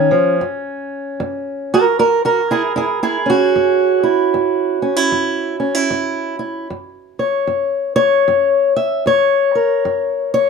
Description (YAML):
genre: acoustic country blues, solo or duo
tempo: 76 BPM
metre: 4/4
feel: swing 61% on 8ths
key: F# mixolydian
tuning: A4 = 440 Hz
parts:
  - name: fingerpicked acoustic archtop guitar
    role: solo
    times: 0.0-10.5 s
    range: F#2 to E5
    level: -14 LUFS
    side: equal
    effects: none
room: light reverb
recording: dark, warm production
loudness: -14 LUFS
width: side -5 dB against mid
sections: 0.0-6.7 A section; 6.7-10.5 B section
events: steel-string acoustic guitar solo 6.7-10.5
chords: 0.4 F#7; 6.7 F#